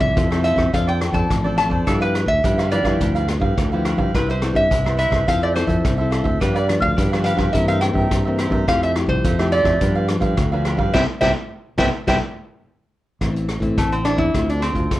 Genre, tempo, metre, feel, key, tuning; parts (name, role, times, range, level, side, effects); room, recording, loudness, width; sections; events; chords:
samba and choro; 106 BPM; 4/4; straight; C major; A4 = 435 Hz
lap resonator guitar; melody; 0.0-15.0 s; A3 to A5; -21 LUFS; equal
nylon-string guitar; accompaniment; 0.0-15.0 s; G2 to A4; -25 LUFS; left 2 dB
modern bright fingered electric bass; bass; 0.0-15.0 s; A1 to A2; -22 LUFS; equal
swinging big-band drum kit; drums; 0.0-15.0 s; hi-hat, kick drum, rim click, snare drum; -23 LUFS; equal
cavaquinho; accompaniment; 0.2-12.2 s; D4 to F5; -27 LUFS; right 4 dB
moderate studio reverb, RT60 0.7 s; worn, warbling old tape, cassette tape, warbly pitch drift; -16 LUFS; side -15 dB against mid
0.0-13.2 A section; 13.2-15.0 B section
band accent 10.9-13.2
0.0 Fmaj7; 0.7 Dm7/F; 1.9 G6; 4.1 Cmaj7; 5.3 Fmaj7; 6.4 G7; 7.5 C7/G; 8.7 Fmaj9; 9.8 G7; 10.9 Cmaj7(no3); 13.2 Am; 14.3 Dm7